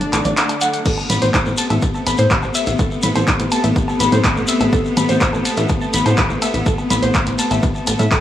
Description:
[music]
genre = melodic techno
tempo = 124 BPM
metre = 4/4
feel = straight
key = A dorian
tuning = A4 = 440 Hz
[part]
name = soft supersaw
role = melody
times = 0.0-0.8 s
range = D4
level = -29 LUFS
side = left 1 dB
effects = cassette tape, sidechain pumping, tape echo
[part]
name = big bright polysynth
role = second line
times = 0.0-0.8 s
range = D5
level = -36 LUFS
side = left 5 dB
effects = none
[part]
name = clear studio string section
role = sustained chords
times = 0.0-8.2 s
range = C3 to B3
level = -22 LUFS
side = left 2 dB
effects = sidechain pumping
[part]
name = warbly dusty pluck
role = arpeggios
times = 0.0-8.2 s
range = A4 to D6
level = -22 LUFS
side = left 1 dB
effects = chorus, sidechain pumping, tape echo
[part]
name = punchy analog drum machine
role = drums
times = 0.0-8.2 s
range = congas, crash cymbal, handclaps, hi-hat, ride cymbal, woodblock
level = -21 LUFS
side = equal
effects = none
[part]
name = shekere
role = percussion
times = 0.0-8.2 s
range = none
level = -27 LUFS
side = left 4 dB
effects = none
[part]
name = airy breathy pad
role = texture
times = 0.0-0.9 s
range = D4 to F#5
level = -35 LUFS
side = equal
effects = none
[part]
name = plucky analog bass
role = bass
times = 0.1-8.1 s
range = A1 to A2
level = -19 LUFS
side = equal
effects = sidechain pumping
[part]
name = electronic kick drum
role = drums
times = 0.9-8.2 s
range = none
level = -19 LUFS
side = equal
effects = none
[sound]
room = digital ambience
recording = dry, gritty hardware recording, small room ambience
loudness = -14 LUFS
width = side -11 dB against mid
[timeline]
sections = 0.9-8.2 A section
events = band accent 0.4; drop 0.9-8.2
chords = 0.0 D/A; 0.9 Amadd9

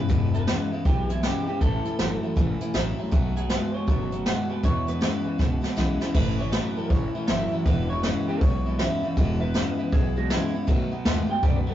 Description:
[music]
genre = rockabilly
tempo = 159 BPM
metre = 4/4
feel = swing 64% on 8ths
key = E major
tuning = A4 = 443 Hz
[part]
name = electric guitar through a small old amp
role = melody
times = 0.0-11.7 s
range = E4 to G5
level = -33 LUFS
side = right 1 dB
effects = spring reverb
[part]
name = picked steel-string acoustic guitar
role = accompaniment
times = 0.0-11.7 s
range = E2 to F#4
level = -30 LUFS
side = equal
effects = none
[part]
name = electric guitar through a small old amp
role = riff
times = 0.0-11.7 s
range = E2 to G#3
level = -31 LUFS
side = equal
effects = none
[part]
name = upright bass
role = bass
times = 0.1-11.7 s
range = E1 to E2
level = -29 LUFS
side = equal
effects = none
[part]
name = jazz brush drum kit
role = drums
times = 0.1-11.5 s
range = crash cymbal, hi-hat, kick drum, snare drum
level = -25 LUFS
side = equal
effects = none
[sound]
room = moderate small room reverb, RT60 0.5 s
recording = rough rehearsal-room recording, warm saturation, nothing above 7.6 kHz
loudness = -22 LUFS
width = side -12 dB against mid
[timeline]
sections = 0.0-6.1 A section; 6.1-11.7 B section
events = drum fill 5.4-6.1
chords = 0.0 E; 1.6 A; 3.1 B7; 4.6 E; 6.1 A; 7.7 E; 10.7 B7

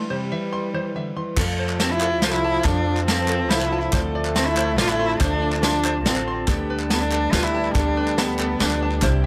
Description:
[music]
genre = indie folk with a building arrangement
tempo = 141 BPM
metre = 3/4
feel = straight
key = G mixolydian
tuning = A4 = 445 Hz
[part]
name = warm cello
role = melody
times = 0.0-8.9 s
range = G3 to F4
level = -26 LUFS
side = equal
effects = none
[part]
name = fingerpicked steel-string acoustic guitar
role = accompaniment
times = 0.0-1.4 s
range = C3 to E4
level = -30 LUFS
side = equal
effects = none
[part]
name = open-back banjo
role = arpeggios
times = 0.0-9.3 s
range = A4 to C6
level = -34 LUFS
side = equal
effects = none
[part]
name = warm trombone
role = second line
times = 1.4-9.3 s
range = F3 to A3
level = -32 LUFS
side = equal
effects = none
[part]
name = felt-muted upright piano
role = accompaniment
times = 1.4-9.3 s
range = F1 to C5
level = -37 LUFS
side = equal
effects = none
[part]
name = picked old ladder-braced acoustic guitar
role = accompaniment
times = 1.4-9.3 s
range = C3 to A4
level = -33 LUFS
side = equal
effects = none
[part]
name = mellow brass ensemble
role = sustained chords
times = 1.4-9.3 s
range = F3 to A5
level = -37 LUFS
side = equal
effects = none
[part]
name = upright bass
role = bass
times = 1.4-9.3 s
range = A1 to F2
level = -28 LUFS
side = equal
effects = none
[part]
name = vintage brush drum kit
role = drums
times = 1.4-9.1 s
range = crash cymbal, hi-hat, kick drum, snare drum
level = -26 LUFS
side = equal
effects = none
[part]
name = group handclap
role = percussion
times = 1.4-9.1 s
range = none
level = -33 LUFS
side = equal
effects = none
[sound]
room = little or no reverb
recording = none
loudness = -22 LUFS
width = mono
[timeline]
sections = 0.0-1.4 A section; 1.4-9.3 B section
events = none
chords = 0.0 Cadd9; 1.4 F; 3.9 Dm7; 6.5 Gadd9/D

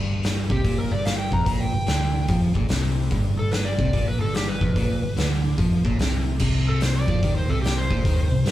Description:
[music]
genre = blues rock power trio and southern rock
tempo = 146 BPM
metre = 4/4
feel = swing 65% on 8ths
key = unclear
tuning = A4 = 440 Hz
[part]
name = crunchy overdriven guitar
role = riff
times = 0.0-8.5 s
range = F2 to G3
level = -26 LUFS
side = equal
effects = none
[part]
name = vintage muted picked electric bass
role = bass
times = 0.0-8.5 s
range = F1 to G2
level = -26 LUFS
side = equal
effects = none
[part]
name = oversized low-tuned drum kit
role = drums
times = 0.2-8.5 s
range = crash cymbal, hi-hat, kick drum, snare drum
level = -24 LUFS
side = equal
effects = none
[part]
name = overdriven slide guitar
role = melody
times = 0.5-8.5 s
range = G4 to Bb5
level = -29 LUFS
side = left 1 dB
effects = none
[sound]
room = light reverb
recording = band playing live in one room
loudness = -20 LUFS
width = side -14 dB against mid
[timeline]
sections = 0.0-8.5 A section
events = electric slide guitar solo 0.0-8.5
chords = 0.0 G7(no3); 6.4 Bbadd9

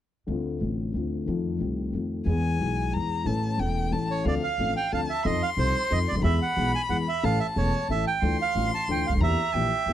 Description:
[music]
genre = tango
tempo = 182 BPM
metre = 3/4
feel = rubato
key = D minor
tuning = A4 = 440 Hz
[part]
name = dark concert grand piano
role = accompaniment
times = 0.3-9.9 s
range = E1 to A4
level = -28 LUFS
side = left 3 dB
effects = none
[part]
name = upright bass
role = bass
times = 0.3-9.9 s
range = E1 to F2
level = -29 LUFS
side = right 1 dB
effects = none
[part]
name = warm violin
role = second line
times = 2.3-9.9 s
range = F5 to C6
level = -31 LUFS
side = left 4 dB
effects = none
[part]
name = bandoneon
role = melody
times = 4.1-9.9 s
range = C5 to A5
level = -28 LUFS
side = right 7 dB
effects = none
[sound]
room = small room ambience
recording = dry, close 1970s-style studio recording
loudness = -24 LUFS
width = side -11 dB against mid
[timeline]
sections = 0.3-4.3 A section; 4.3-9.9 B section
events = none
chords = 0.3 Dm7; 1.3 F7; 2.3 E; 3.3 A; 4.3 Dm7; 5.2 F7; 6.2 E; 7.2 A; 8.2 Dmadd9; 9.2 Em7b5

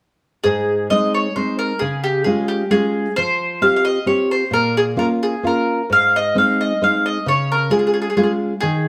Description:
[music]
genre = italian folk, Italian serenade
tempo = 132 BPM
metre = 3/4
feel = straight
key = Ab major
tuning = A4 = 440 Hz
[part]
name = mandolin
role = melody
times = 0.4-8.9 s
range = G4 to F5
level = -20 LUFS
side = equal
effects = none
[part]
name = nylon-string guitar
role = accompaniment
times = 0.4-8.9 s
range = Ab2 to G4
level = -22 LUFS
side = equal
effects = none
[sound]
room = moderate stone room reverb, RT60 1.1 s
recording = band playing live in one room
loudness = -18 LUFS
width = mono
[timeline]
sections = 0.4-8.9 A section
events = none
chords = 0.4 Ab; 1.8 Db; 3.2 Fsus2; 4.5 Bbm; 5.9 Ab; 7.3 Db

